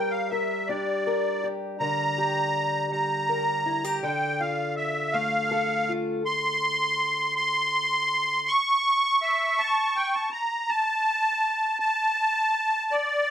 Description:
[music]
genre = folk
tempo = 54 BPM (dotted quarters)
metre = 6/8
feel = straight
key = unclear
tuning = A4 = 439 Hz
[part]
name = musette accordion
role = melody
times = 0.0-13.3 s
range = D5 to C#6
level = -23 LUFS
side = equal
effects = none
[part]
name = fingerpicked acoustic archtop guitar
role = accompaniment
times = 0.0-8.5 s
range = D3 to Bb4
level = -29 LUFS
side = left 2 dB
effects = none
[sound]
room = moderate studio reverb, RT60 0.8 s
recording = band playing live in one room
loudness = -23 LUFS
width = side -10 dB against mid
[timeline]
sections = 0.0-1.8 A section; 1.8-10.7 B section; 10.7-13.3 C section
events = none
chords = 0.0 Gm; 1.8 Gm/D; 4.0 F/D; 6.3 N.C.

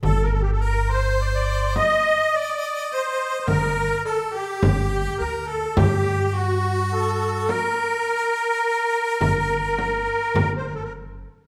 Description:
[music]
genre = Arabic maqam ensemble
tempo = 105 BPM (eighths)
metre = 10/8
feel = straight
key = G maqam nahawand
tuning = A4 = 441 Hz
[part]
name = clear harmonica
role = second line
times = 0.0-10.6 s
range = F#4 to Eb5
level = -32 LUFS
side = equal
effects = none
[part]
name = upright bass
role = bass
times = 0.0-11.2 s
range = F#1 to G2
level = -28 LUFS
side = equal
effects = none
[part]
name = darbuka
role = percussion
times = 0.0-10.6 s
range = none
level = -30 LUFS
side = equal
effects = none
[part]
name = frame drum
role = percussion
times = 0.0-10.6 s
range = none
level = -28 LUFS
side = equal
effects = none
[part]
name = musette accordion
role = melody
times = 0.1-10.9 s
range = F#4 to Eb5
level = -25 LUFS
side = equal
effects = none
[sound]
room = wet recital hall reverb, RT60 1.4 s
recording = none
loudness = -22 LUFS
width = mono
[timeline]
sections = 0.0-11.5 A section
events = none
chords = none

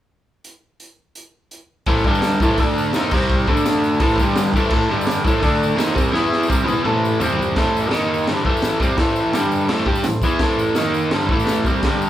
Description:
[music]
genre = garage rock duo or trio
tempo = 169 BPM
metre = 4/4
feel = straight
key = A minor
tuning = A4 = 442 Hz
[part]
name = raw garage drum kit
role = drums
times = 0.4-11.9 s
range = crash cymbal, hi-hat, kick drum, snare drum, toms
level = -22 LUFS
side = equal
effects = none
[part]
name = combo organ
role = sustained chords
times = 1.9-12.1 s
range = C4 to B5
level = -30 LUFS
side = equal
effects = none
[part]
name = overdriven electric guitar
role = riff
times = 1.9-12.1 s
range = G2 to G4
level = -17 LUFS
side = equal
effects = none
[part]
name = tambourine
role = percussion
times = 1.9-12.1 s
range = none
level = -38 LUFS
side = left 4 dB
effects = none
[sound]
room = moderate large studio reverb, RT60 0.8 s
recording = band playing live in one room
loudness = -16 LUFS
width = side -12 dB against mid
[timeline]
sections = 0.4-1.9 A section; 1.9-7.6 B section; 7.6-12.1 C section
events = transistor combo organ fill 3.6-4.7; drum fill 6.1-7.6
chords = 0.4 N.C.; 1.9 Am; 2.0 G5; 2.4 Am; 2.6 D5; 2.9 Am; 3.1 C5; 3.5 D5; 4.0 Am; 4.2 G5; 4.5 Am; 4.9 G5; 5.2 Am; 5.4 D5; 5.8 Am; 6.1 E5; 6.5 Am; 7.2 C5; 7.6 Am; 7.9 D#5; 8.3 Am; 9.3 G5; 9.7 Am; 10.8 D#5; 11.1 Am

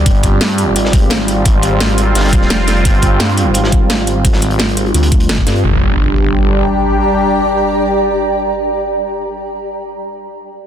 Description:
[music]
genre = dark technical drum and bass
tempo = 172 BPM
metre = 4/4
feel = straight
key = G phrygian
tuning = A4 = 441 Hz
[part]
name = sweeping resonant pad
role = sustained chords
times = 0.0-9.2 s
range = G3 to G4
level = -17 LUFS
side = equal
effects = chorus, sidechain pumping
[part]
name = phased detuned saw bass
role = bass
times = 0.0-6.6 s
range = F1 to G2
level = -14 LUFS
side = equal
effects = phaser, tube saturation
[part]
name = granular cloud pad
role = texture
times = 0.0-9.2 s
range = G4 to D6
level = -19 LUFS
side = right 1 dB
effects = built-in reverb, sidechain pumping
[part]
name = crunchy breakbeat drum kit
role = drums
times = 0.1-5.6 s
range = hi-hat, snare drum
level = -25 LUFS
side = equal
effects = high-pass filter on hats, high-pass filter on snare, high-pass filter on room
[part]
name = drum and bass drum kit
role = drums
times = 0.1-5.5 s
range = hi-hat, snare drum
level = -18 LUFS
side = equal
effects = none
[part]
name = electronic kick drum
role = drums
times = 0.1-5.5 s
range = none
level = -12 LUFS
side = equal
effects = none
[part]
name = impact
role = sound effects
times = 5.6-9.3 s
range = none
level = -20 LUFS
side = equal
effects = none
[sound]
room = moderate lush hall reverb, RT60 1.9 s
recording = dense, heavily limited modern master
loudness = -11 LUFS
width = side -9 dB against mid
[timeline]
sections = 0.0-5.6 A section; 5.6-8.4 B section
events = none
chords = 0.0 Gm

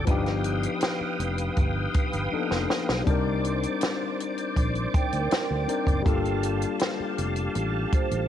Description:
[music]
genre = lush 1970s-style soul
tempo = 80 BPM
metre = 4/4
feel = straight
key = G minor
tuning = A4 = 440 Hz
[part]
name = barky tine electric piano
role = accompaniment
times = 0.0-8.3 s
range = F3 to Bb4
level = -30 LUFS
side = left 7 dB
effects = overdrive, cassette tape
[part]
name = bright tonewheel organ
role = sustained chords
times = 0.0-8.3 s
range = G4 to Eb6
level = -32 LUFS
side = right 2 dB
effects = fast rotary speaker, chorus vibrato, cassette tape
[part]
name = fingered electric bass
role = bass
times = 0.0-8.3 s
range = F1 to D2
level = -29 LUFS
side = right 1 dB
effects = none
[part]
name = vibraphone with soft mallets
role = texture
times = 0.0-0.2, 4.9-8.3 s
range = Bb4 to A5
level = -32 LUFS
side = right 10 dB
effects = cassette tape
[part]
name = compact cocktail drum kit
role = drums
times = 0.1-8.3 s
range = hi-hat, kick drum, snare drum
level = -27 LUFS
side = equal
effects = cassette tape
[sound]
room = light reverb, studio reverb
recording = home recording on cassette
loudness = -24 LUFS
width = side -10 dB against mid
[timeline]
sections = 0.0-8.3 A section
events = drum fill 2.3-3.1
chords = 0.1 G7b13; 3.1 Cm9; 6.1 Gm9

